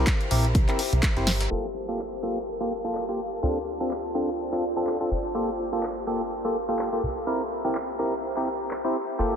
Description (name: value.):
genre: piano house.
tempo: 125 BPM.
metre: 4/4.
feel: swing 57% on 16ths.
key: G dorian.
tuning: A4 = 440 Hz.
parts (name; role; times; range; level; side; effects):
percussive organ stab; riff; 0.0-9.3 s; Bb3 to C5; -27 LUFS; equal; chorus, sidechain pumping, ping-pong delay.
plucky analog bass; bass; 0.0-9.4 s; G1 to D2; -28 LUFS; equal; sidechain pumping.
airy breathy pad; texture; 0.0-9.4 s; F4 to Bb5; -32 LUFS; left 1 dB; chorus, sidechain pumping.
breakbeat sampler-style drum kit; drums; 0.1-1.5 s; hi-hat, snare drum; -39 LUFS; equal; none.
electronic kick drum; drums; 0.1-1.1 s; none; -23 LUFS; equal; none.
house drum kit; drums; 0.1-8.8 s; crash cymbal, handclaps, hi-hat, snare drum; -31 LUFS; equal; low-pass filter on hats, low-pass filter on snare, low-pass filter on cymbals.
room: wet huge ambient reverb, RT60 8.2 s.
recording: dreamy mix soaked in reverb, low-pass filter.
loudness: -24 LUFS.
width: side -8 dB against mid.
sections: 0.0-1.5 A section; 1.5-9.4 B section.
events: drum fill 1.3; filter sweep 1.5-9.4.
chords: 0.0 C7; 1.5 Gm9; 3.4 Dm7; 5.1 Gm9; 7.0 C7.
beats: 0.07 0.55 1.03 | 1.51 1.99 2.47 2.95 | 3.43 3.91 4.39 4.87 | 5.35 5.83 6.31 6.79 | 7.27 7.75 8.23 8.71 | 9.19.